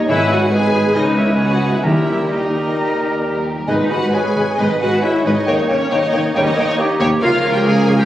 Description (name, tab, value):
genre	classical, dramatic, fast romantic movement for symphony orchestra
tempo	135 BPM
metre	4/4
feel	uneven beats, rubato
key	unclear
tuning	A4 = 440 Hz
part	warm studio violin section	melody	0.0-8.0 s	G4 to C#5	-26 LUFS	left 2 dB	none
part	bright concert flute	second line	0.0-7.9 s	F5 to A#5	-26 LUFS	equal	none
part	warm clarinet	second line	0.0-8.1 s	G4 to D#5	-23 LUFS	equal	none
part	warm oboe	second line	0.0-8.0 s	A#4 to Db5	-28 LUFS	equal	none
part	warm bassoon	accompaniment	0.0-8.0 s	G3 to A#3	-25 LUFS	right 1 dB	none
part	mellow French horn section	sustained chords	0.0-8.0 s	A#3 to A#4	-26 LUFS	equal	none
part	warm trombone section	sustained chords	0.0-8.0 s	A#2 to G#3	-27 LUFS	right 1 dB	none
part	concert harp	arpeggios	0.0-8.1 s	G#2 to C#6	-29 LUFS	left 4 dB	none
part	warm symphonic cello section	bass	0.0-8.1 s	C#2 to G#2	-22 LUFS	right 1 dB	none
part	warm symphonic double bass section	bass	0.0-8.1 s	G#1 to D#2	-24 LUFS	right 1 dB	none
part	warm symphonic violin section	second line	0.1-8.1 s	C#5 to G#5	-26 LUFS	left 2 dB	none
part	warm symphonic viola section	accompaniment	0.1-8.1 s	C#4 to G#4	-21 LUFS	equal	none
part	timpani	percussion	0.1-4.3 s	G#2 to D#3	-25 LUFS	equal	none
room	wet scoring stage reverb, RT60 1.7 s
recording	recorded on a phone in the room, club reverb, compression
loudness	-14 LUFS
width	side -13 dB against mid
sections	0.0-8.1 A section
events	none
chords	0.1 G#m; 1.0 C#5; 1.8 D#; 3.7 G#m; 5.5 D#7; 7.2 Bbm/Db